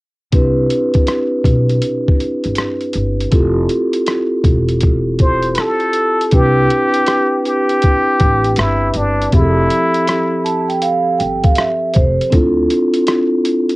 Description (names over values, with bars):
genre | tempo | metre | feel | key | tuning
hip hop, jazz-hop | 80 BPM | 4/4 | swing 66% on 16ths | C major | A4 = 440 Hz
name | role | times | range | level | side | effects
vibraphone with soft mallets | accompaniment | 0.3-13.8 s | F3 to A5 | -16 LUFS | right 1 dB | cassette tape
upright bass | bass | 0.3-12.7 s | E1 to D2 | -18 LUFS | equal | none
boom bap sampler-style drum kit | drums | 0.3-13.8 s | hi-hat, kick drum, rim click | -15 LUFS | equal | cassette tape
trumpet with plunger mute | melody | 5.2-10.8 s | D4 to C5 | -16 LUFS | equal | tape echo
room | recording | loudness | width
light reverb | home recording on cassette | -12 LUFS | side -21 dB against mid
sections
0.3-6.3 A section; 6.3-13.8 B section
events
vibraphone fill 10.1-12.3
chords
0.3 Cmaj7; 3.3 Fmaj7; 6.3 Cmaj7; 9.3 Fmaj7; 12.3 Dm7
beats
| 0.33 1.07 1.82 2.58 | 3.33 4.08 4.83 5.58 | 6.33 7.08 7.83 8.57 | 9.32 10.07 10.82 11.57 | 12.32 13.07